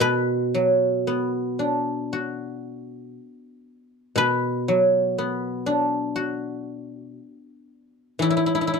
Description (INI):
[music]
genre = chinese traditional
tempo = 59 BPM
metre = 2/4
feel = uneven beats, rubato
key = unclear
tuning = A4 = 439 Hz
[part]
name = guzheng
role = solo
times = 0.0-8.8 s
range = B2 to B4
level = -21 LUFS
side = equal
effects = none
[sound]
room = little or no reverb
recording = dry, close 1970s-style studio recording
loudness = -21 LUFS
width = side -5 dB against mid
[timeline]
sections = 0.0-8.8 A section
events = none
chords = none